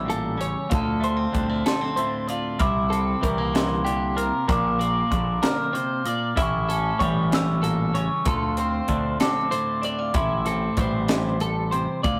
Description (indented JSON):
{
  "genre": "math rock and midwest emo",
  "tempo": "64 BPM (dotted quarters)",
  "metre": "6/8",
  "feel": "straight",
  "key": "unclear",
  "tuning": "A4 = 441 Hz",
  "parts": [
    { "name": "glockenspiel with rubber mallets", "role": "melody", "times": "0.0-11.7 s", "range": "A5 to F6", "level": "-31 LUFS", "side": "equal", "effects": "none" },
    { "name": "twelve-string electric guitar", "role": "accompaniment", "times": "0.0-12.2 s", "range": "D2 to F4", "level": "-30 LUFS", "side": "equal", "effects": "none" },
    { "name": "twelve-string electric guitar", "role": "arpeggios", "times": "0.0-12.2 s", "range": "G4 to E5", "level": "-31 LUFS", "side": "equal", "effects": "none" },
    { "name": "growling picked electric bass", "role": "bass", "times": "0.0-12.2 s", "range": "A1 to D2", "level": "-29 LUFS", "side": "equal", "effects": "overdrive" },
    { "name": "crisp fusion drum kit", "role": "drums", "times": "0.1-12.2 s", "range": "hi-hat, kick drum, snare drum", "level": "-29 LUFS", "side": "equal", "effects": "none" }
  ],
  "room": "moderate small room reverb, RT60 0.6 s",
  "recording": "rough rehearsal-room recording, tube saturation",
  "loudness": "-24 LUFS",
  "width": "mono",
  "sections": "0.0-12.0 A section",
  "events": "none",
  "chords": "0.0 A7; 0.7 Dm7; 2.6 C7; 4.5 Bb; 6.4 A7; 8.3 Dm7; 10.1 Am7"
}